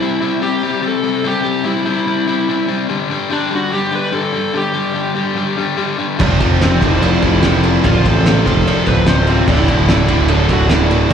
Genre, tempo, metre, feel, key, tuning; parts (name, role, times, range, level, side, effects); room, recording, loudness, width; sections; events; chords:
classic rock; 146 BPM; 4/4; straight; A4 = 440 Hz
dark smooth lead guitar; melody; 0.0-11.1 s; C4 to C5; -20 LUFS; right 1 dB; overdrive, slapback echo
overdriven electric guitar; riff; 0.0-11.1 s; D2 to C4; -18 LUFS; left 7 dB; slapback echo
picked steel-string acoustic guitar; accompaniment; 6.2-11.1 s; D3 to D5; -26 LUFS; equal
distorted electric guitar; riff; 6.2-11.1 s; D2 to F3; -22 LUFS; right 1 dB
overdriven electric guitar; riff; 6.2-11.1 s; D2 to F3; -20 LUFS; right 13 dB; slapback echo
fuzz picked electric bass; bass; 6.2-11.1 s; D1 to A1; -15 LUFS; right 1 dB; overdrive
cloth-damped thuddy drum kit; drums; 6.2-11.1 s; crash cymbal, kick drum, ride cymbal, snare drum; -17 LUFS; right 1 dB
cowbell; percussion; 6.2-11.1 s; -30 LUFS; right 1 dB
little or no reverb; live gig heard through the venue's PA, club reverb; -13 LUFS; side -8 dB against mid
0.0-11.1 A section
0.0 C; 2.9 G5; 6.2 F; 9.5 Dadd9